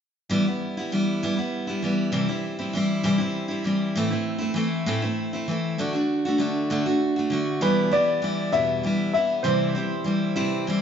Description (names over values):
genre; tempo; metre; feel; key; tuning
rock; 66 BPM (dotted quarters); 6/8; straight; E minor; A4 = 440 Hz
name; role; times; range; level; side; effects
picked steel-string acoustic guitar; accompaniment; 0.3-10.8 s; E2 to F#4; -23 LUFS; equal; none
warm baby grand piano; melody; 7.6-10.8 s; B4 to E5; -24 LUFS; left 1 dB; none
room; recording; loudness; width
moderate large studio reverb, RT60 1.2 s; band playing live in one room, nothing above 7.7 kHz; -22 LUFS; side -8 dB against mid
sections
0.3-7.6 A section; 7.6-10.8 B section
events
none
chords
0.3 Em; 2.1 C; 4.0 Am; 5.8 D; 7.6 Em; 9.4 C